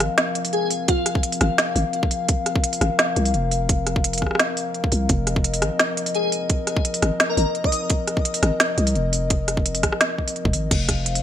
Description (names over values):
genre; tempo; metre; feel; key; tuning
half-time drum and bass; 171 BPM; 4/4; half-time; F minor; A4 = 440 Hz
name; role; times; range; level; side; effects
dark analog pad; sustained chords; 0.0-11.2 s; F3 to F5; -26 LUFS; left 2 dB; chorus, sidechain pumping
growling 808-style bass; bass; 0.0-11.2 s; Eb1 to C2; -22 LUFS; equal; none
organic electronic drum kit; drums; 0.0-11.2 s; crash cymbal, hi-hat, rim click, snare drum; -21 LUFS; right 1 dB; none
airy dreamy lead; melody; 0.5-1.0, 6.2-7.8 s; F4 to Eb5; -26 LUFS; left 2 dB; chorus, ping-pong delay
electronic kick drum; drums; 0.9-11.0 s; none; -22 LUFS; equal; none
room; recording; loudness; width
light reverb; none; -19 LUFS; side -10 dB against mid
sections
0.0-10.7 A section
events
drop 0.0-10.7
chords
0.0 F5